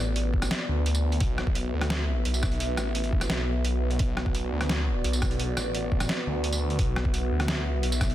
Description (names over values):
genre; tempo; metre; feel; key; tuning
half-time drum and bass; 172 BPM; 4/4; half-time; B minor; A4 = 439 Hz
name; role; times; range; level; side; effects
dark analog pad; sustained chords; 0.0-8.1 s; B3 to E5; -32 LUFS; equal; chorus, sidechain pumping
phased detuned saw bass; bass; 0.0-8.1 s; A1 to D2; -27 LUFS; equal; phaser, tube saturation
boom bap sampler-style drum kit; drums; 0.2-8.1 s; hi-hat, rim click, snare drum, tambourine; -31 LUFS; equal; overdrive
electronic kick drum; drums; 0.3-8.1 s; none; -27 LUFS; equal; overdrive
room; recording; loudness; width
light reverb; dense, heavily limited modern master; -24 LUFS; side -13 dB against mid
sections
0.0-8.1 A section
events
none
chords
0.0 Bm